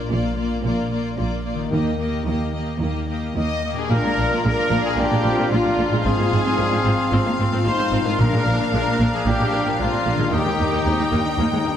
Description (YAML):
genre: cinematic, heroic adventure film score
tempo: 112 BPM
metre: 4/4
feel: straight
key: Bb mixolydian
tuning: A4 = 440 Hz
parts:
  - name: rich studio violin section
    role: melody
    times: 0.0-11.8 s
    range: D5 to G5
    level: -32 LUFS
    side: left 5 dB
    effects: none
  - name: clear symphonic violin section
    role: second line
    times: 0.0-11.7 s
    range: F4 to Eb5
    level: -29 LUFS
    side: left 3 dB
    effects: none
  - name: clear symphonic viola section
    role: accompaniment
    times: 0.0-11.8 s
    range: Ab3 to F4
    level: -26 LUFS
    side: left 1 dB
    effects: none
  - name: concert harp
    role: arpeggios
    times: 0.0-11.8 s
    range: Ab2 to C5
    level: -32 LUFS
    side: left 9 dB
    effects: none
  - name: rich symphonic cello section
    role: bass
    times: 0.0-11.7 s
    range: Eb2 to Eb3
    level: -26 LUFS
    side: right 2 dB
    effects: none
  - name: rich symphonic double bass section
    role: bass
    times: 0.0-11.7 s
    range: Ab1 to Eb2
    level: -25 LUFS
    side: right 2 dB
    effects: none
  - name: mellow trumpet section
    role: stabs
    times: 3.4-11.7 s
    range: F4 to Eb5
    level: -27 LUFS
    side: equal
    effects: none
  - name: concert flute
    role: second line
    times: 3.9-11.8 s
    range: Bb5 to C6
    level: -31 LUFS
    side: left 4 dB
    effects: none
  - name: dark clarinet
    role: second line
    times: 3.9-11.8 s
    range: C4 to Eb4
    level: -30 LUFS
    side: left 1 dB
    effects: none
  - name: warm oboe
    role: second line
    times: 3.9-11.8 s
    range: Eb5 to F5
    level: -30 LUFS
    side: equal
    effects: none
  - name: clear trombone section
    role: sustained chords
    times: 3.9-11.8 s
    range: Eb3 to Eb4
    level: -31 LUFS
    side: right 2 dB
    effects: none
  - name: mellow French horn section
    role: sustained chords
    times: 3.9-11.8 s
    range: Bb3 to F4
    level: -30 LUFS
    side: left 4 dB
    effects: none
  - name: timpani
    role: percussion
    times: 8.2-9.0 s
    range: Bb2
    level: -27 LUFS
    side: left 1 dB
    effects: none
room: wet concert hall reverb, RT60 2.5 s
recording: none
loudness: -18 LUFS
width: side -9 dB against mid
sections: 0.0-3.9 A section; 3.9-11.8 B section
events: none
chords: 0.0 Bb; 1.7 Eb; 3.9 Bb; 6.1 Fm/Ab; 8.2 Bb; 10.3 Eb